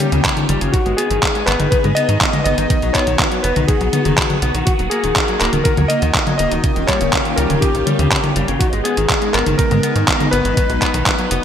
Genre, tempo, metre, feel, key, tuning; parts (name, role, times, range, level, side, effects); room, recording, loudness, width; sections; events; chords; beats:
italo disco; 122 BPM; 4/4; straight; Eb minor; A4 = 440 Hz
warm electric grand piano; melody; 0.0-11.4 s; Gb4 to Eb5; -21 LUFS; left 2 dB; ping-pong delay
phased string machine; sustained chords; 0.0-11.4 s; Eb3 to Ab4; -22 LUFS; equal; ensemble chorus, phaser
clean electric guitar; arpeggios; 0.0-11.4 s; Db3 to Cb4; -24 LUFS; left 4 dB; vintage 12-bit sampler grit, ping-pong delay
detuned 8-bit digital drum machine; drums; 0.0-11.4 s; handclaps, hi-hat, toms; -18 LUFS; equal; overdrive, gated reverb
tight sequencer bass; bass; 0.1-11.4 s; Eb1 to Ab2; -20 LUFS; right 1 dB
electronic kick drum; drums; 0.2-11.2 s; -20 LUFS; right 1 dB; overdrive
moderate plate reverb, RT60 1.9 s, digital ambience; bright 1980s-style digital production; -14 LUFS; side -9 dB against mid
0.0-11.4 A section
0.0 Eb7; 0.7 Abm; 2.7 B; 4.7 Ebm; 6.6 Eb7; 8.6 Abm; 10.6 B
0.24 | 0.74 1.23 1.72 2.21 | 2.70 3.19 3.69 4.18 | 4.67 5.16 5.65 6.15 | 6.64 7.13 7.62 8.11 | 8.61 9.10 9.59 10.08 | 10.57 11.06